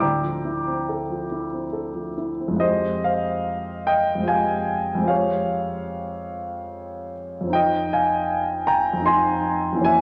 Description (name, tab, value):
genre	classical, impressionist solo piano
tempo	68-81 BPM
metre	3/4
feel	rubato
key	F minor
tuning	A4 = 441 Hz
part	warm grand piano	solo	0.0-10.0 s	D2 to D6	-23 LUFS	equal	none
room	wet concert hall reverb, RT60 2.0 s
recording	none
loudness	-23 LUFS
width	mono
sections	0.0-2.6 A section; 2.6-10.0 B section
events	none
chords	0.0 Dm9; 2.6 Fmadd9; 5.1 Dbmaj7#11/F; 7.5 Fm7